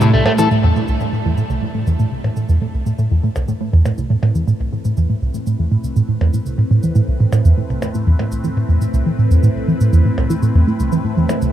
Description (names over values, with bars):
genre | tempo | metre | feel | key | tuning
ambient, sequencer-driven space music | 121 BPM | 4/4 | straight | A minor | A4 = 440 Hz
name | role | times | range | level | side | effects
phased analog pad | sustained chords | 0.0-11.5 s | A2 to C5 | -24 LUFS | right 1 dB | phaser, chorus
electric guitar at the edge of break-up | arpeggios | 0.0-0.5 s | A2 to A4 | -21 LUFS | left 2 dB | auto-pan, ping-pong delay
tight sequenced synth | riff | 0.0-11.5 s | C2 to E3 | -15 LUFS | right 1 dB | chorus, ping-pong delay
shaker and percussion blips | percussion | 0.0-11.5 s | none | -28 LUFS | right 2 dB | ping-pong delay
room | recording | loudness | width
moderate huge ambient reverb, RT60 8.2 s | none | -14 LUFS | side -11 dB against mid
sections
0.5-11.5 A section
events
fade-in on analog synth pad 0.5-11.5; fade-in on drum 0.5-11.5; filter sweep on synth arpeggio sound 0.5-11.5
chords
0.0 Am; 0.5 Amadd9